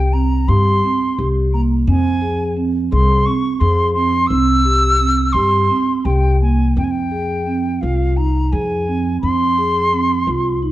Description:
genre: contemporary instrumental, chamber music in an uneven meter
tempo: 172 BPM (eighths)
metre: 7/8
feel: straight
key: F minor from 6.8 s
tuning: A4 = 441 Hz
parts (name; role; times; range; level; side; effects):
- concert flute; melody; 0.0-10.6 s; F5 to E6; -19 LUFS; equal; none
- vibraphone with soft mallets; arpeggios; 0.0-10.7 s; Bb3 to Ab4; -19 LUFS; right 3 dB; none
- upright bass; bass; 0.0-10.7 s; C2 to G2; -18 LUFS; left 1 dB; none
room: light reverb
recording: dark, warm production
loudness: -14 LUFS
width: side -15 dB against mid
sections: 0.0-6.8 A section; 6.8-10.7 B section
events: none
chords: 0.0 C5; 1.9 Fm; 4.3 C; 6.8 Fm

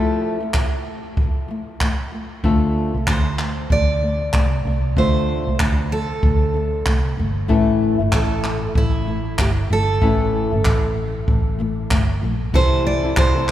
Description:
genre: acoustic pop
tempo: 95 BPM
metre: 4/4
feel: swing 60% on 16ths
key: D minor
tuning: A4 = 440 Hz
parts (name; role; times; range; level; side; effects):
- picked steel-string acoustic guitar; melody; 0.0-13.5 s; E4 to D5; -24 LUFS; right 3 dB; none
- flamenco guitar; accompaniment; 0.0-13.5 s; A2 to A4; -23 LUFS; left 3 dB; none
- jazz brush drum kit; drums; 0.5-13.5 s; crash cymbal, handclaps, kick drum; -21 LUFS; equal; none
- vintage muted fingered electric bass; bass; 2.4-13.5 s; G1 to D2; -22 LUFS; equal; none
- barky reed electric piano; accompaniment; 12.5-13.5 s; A3 to C5; -29 LUFS; left 3 dB; overdrive, fast tremolo
room: moderate cathedral reverb, RT60 5.6 s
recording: recorded in a church or concert hall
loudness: -17 LUFS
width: side -12 dB against mid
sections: 0.0-12.5 A section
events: none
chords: 0.0 Fmaj7; 2.4 Dm7; 7.5 A; 12.5 C6

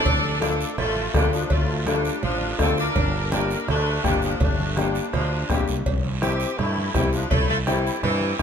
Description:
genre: latin, cumbia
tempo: 166 BPM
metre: 4/4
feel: straight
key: D minor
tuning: A4 = 440 Hz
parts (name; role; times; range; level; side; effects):
- edgy saxophone section; melody; 0.0-8.4 s; E3 to D4; -26 LUFS; right 2 dB; none
- musette accordion; second line; 0.0-8.4 s; C4 to Bb4; -32 LUFS; left 4 dB; none
- fretless electric bass; bass; 0.1-8.4 s; G1 to G2; -26 LUFS; right 1 dB; none
- bombo; percussion; 0.1-8.4 s; none; -26 LUFS; left 1 dB; none
- congas; percussion; 0.1-8.4 s; none; -32 LUFS; right 3 dB; none
- cowbell and timbales; percussion; 0.1-8.4 s; none; -35 LUFS; right 5 dB; none
- guiro; percussion; 0.1-8.4 s; none; -36 LUFS; right 7 dB; none
- clear upright piano; accompaniment; 0.4-8.4 s; A3 to G4; -28 LUFS; left 5 dB; none
room: light reverb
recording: minimal, uncompressed stereo recording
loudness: -20 LUFS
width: side -7 dB against mid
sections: 0.1-8.4 A section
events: none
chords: 0.1 Dm; 3.0 Gm; 5.9 C

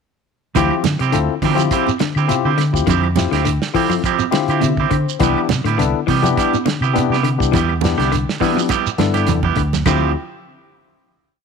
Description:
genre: afrobeat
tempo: 103 BPM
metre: 4/4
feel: swing 54% on 16ths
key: D dorian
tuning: A4 = 442 Hz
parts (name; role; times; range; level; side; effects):
- electric guitar at the edge of break-up; stabs; 0.5-10.1 s; F3 to G4; -21 LUFS; right 12 dB; none
- barky tine electric piano; accompaniment; 0.6-10.1 s; B3 to F5; -21 LUFS; left 12 dB; auto-pan
- clean electric guitar; arpeggios; 0.6-10.0 s; C3 to F3; -23 LUFS; left 11 dB; none
- fingered electric bass; bass; 0.6-10.1 s; C2 to D3; -19 LUFS; equal; none
- warm soul drum kit; drums; 0.6-10.0 s; crash cymbal, hi-hat, kick drum, snare drum; -23 LUFS; right 4 dB; none
- congas; percussion; 0.6-10.0 s; none; -25 LUFS; right 12 dB; none
- shekere; percussion; 0.6-10.0 s; none; -27 LUFS; right 7 dB; none
- claves; percussion; 0.7-10.0 s; none; -32 LUFS; left 15 dB; none
room: light reverb, small room ambience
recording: 1960s-style stereo with parts hard left and right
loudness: -14 LUFS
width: side -6 dB against mid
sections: 0.6-9.9 groove; 9.9-11.4 final chord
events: tine electric piano fill 4.0-5.2; drum fill 8.7-9.9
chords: 0.6 Dm11; 5.2 Cmaj7; 9.9 Dm11

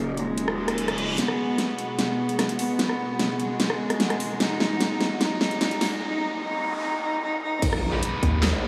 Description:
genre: heavy wobble dubstep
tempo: 149 BPM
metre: 4/4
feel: half-time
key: G# minor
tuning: A4 = 440 Hz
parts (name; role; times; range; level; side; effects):
- rich cello; melody; 0.0-7.6 s; G#3 to D#4; -30 LUFS; equal; analog delay
- lush unison pad; sustained chords; 0.0-8.7 s; B2 to F#4; -35 LUFS; equal; chorus, sidechain pumping
- growl bass; bass; 0.0-1.2, 7.6-8.7 s; D#1 to A#1; -32 LUFS; equal; chorus, overdrive
- big-room dance drum kit; drums; 0.2-8.5 s; crash cymbal, handclaps, hi-hat, rim click, snare drum; -29 LUFS; equal; none
- reverse cymbal, riser, noise sweep and impact; sound effects; 0.6-8.7 s; none; -38 LUFS; equal; none
- electronic kick drum; drums; 7.6-8.3 s; none; -28 LUFS; equal; none
- fuzz guitar; stabs; 7.9-8.7 s; G#3 to B4; -32 LUFS; equal; distortion, analog delay
- snarling distorted saw bass; bass; 8.2-8.5 s; D#2; -25 LUFS; equal; distortion, overdrive
room: wet huge ambient reverb, RT60 7.1 s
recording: dreamy mix soaked in reverb, high-pass filter, small room reverb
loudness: -25 LUFS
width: mono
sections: 0.0-1.2 A section; 1.2-7.6 B section; 7.6-8.7 C section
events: filter sweep on drum 0.0-1.2; reverse cymbal 0.6-1.2; build-up 1.2-7.6; drum fill 1.2-6.0; break 6.0-7.6; noise sweep 6.0-7.6; drop 7.6-8.7; impact 7.6-8.7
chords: 0.0 D#m7; 1.2 G#m7; 7.6 G#m

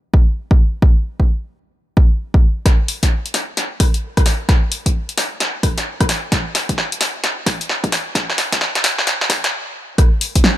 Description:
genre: UK garage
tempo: 131 BPM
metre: 4/4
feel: swing 63% on 16ths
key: none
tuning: none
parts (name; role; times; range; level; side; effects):
- electronic kick drum; drums; 0.1-10.4 s; none; -14 LUFS; equal; none
- punchy analog drum machine; drums; 2.7-10.6 s; hi-hat, rim click, snare drum; -18 LUFS; left 1 dB; high-pass filter on snare, high-pass filter on hats, high-pass filter on room
room: little or no reverb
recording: high-pass filter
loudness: -15 LUFS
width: side -14 dB against mid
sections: 0.0-2.7 A section; 2.7-10.0 B section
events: build-up 2.7-10.0; drum fill 2.7-9.5; filter sweep 2.7-10.0; stop 9.5-10.0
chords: none

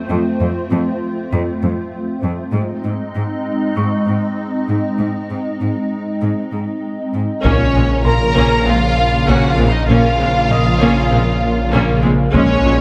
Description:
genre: cinematic, hybrid orchestral and electronic film score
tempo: 98 BPM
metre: 4/4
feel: straight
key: Bb minor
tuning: A4 = 440 Hz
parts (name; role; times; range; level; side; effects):
- hollow soft pad; sustained chords; 0.0-12.8 s; Db3 to Eb5; -23 LUFS; equal; ensemble chorus
- bright grand piano; texture; 0.0-12.4 s; Eb5 to Eb6; -32 LUFS; equal; digital delay
- rich symphonic cello section; bass; 0.1-12.7 s; F2 to Bb2; -23 LUFS; equal; none
- warm symphonic violin section; melody; 7.4-12.8 s; Db5 to Bb5; -24 LUFS; equal; none
- rich symphonic viola section; accompaniment; 7.4-12.7 s; Gb3 to Db4; -24 LUFS; equal; none
- clear symphonic double bass section; bass; 7.4-12.7 s; Bb1; -24 LUFS; equal; none
- detuned saw bass; bass; 7.4-12.8 s; Bb1; -21 LUFS; equal; none
- warm symphonic violin section; second line; 7.5-12.8 s; Db4 to Bb4; -23 LUFS; equal; none
- mellow French horn section; sustained chords; 7.5-12.8 s; Db3 to Bb3; -24 LUFS; equal; none
- taiko ensemble; drums; 7.5-8.6, 12.3-12.8 s; none; -23 LUFS; equal; none
room: moderate concert hall reverb, RT60 2.4 s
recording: none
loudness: -17 LUFS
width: mono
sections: 0.0-7.4 A section; 7.4-12.8 B section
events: build-up 0.0-7.4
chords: 0.0 F; 2.5 Ab; 7.4 Bbm

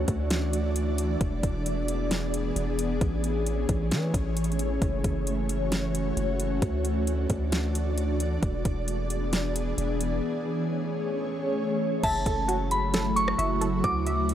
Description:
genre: hip hop, atmospheric cloud-rap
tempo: 133 BPM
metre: 4/4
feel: half-time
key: F# minor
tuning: A4 = 440 Hz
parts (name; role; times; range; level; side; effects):
- ethereal airy pad; sustained chords; 0.0-14.3 s; C#3 to D5; -29 LUFS; equal; ensemble chorus, built-in reverb, sidechain pumping
- long sustained 808-style bass; bass; 0.0-14.3 s; E1 to E3; -29 LUFS; equal; none
- smooth R&B drum kit; drums; 0.1-14.3 s; crash cymbal, hi-hat, kick drum, rim click, snare drum; -30 LUFS; equal; overdrive
- soft synth bell; melody; 12.0-14.3 s; A5 to D6; -27 LUFS; equal; chorus, low-pass filter, digital delay
- warbly dusty pluck; arpeggios; 12.0-14.3 s; F#4 to E5; -34 LUFS; right 2 dB; chorus, low-pass filter, digital delay
room: light reverb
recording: none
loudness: -25 LUFS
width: side -10 dB against mid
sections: 0.0-12.0 A section; 12.0-14.3 B section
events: none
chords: 0.0 Dadd9; 1.2 E7; 3.0 Amaj7; 4.8 F#m7; 6.6 Dadd9; 8.4 E7; 10.2 Amaj7; 12.0 F#m7; 13.8 Dadd9

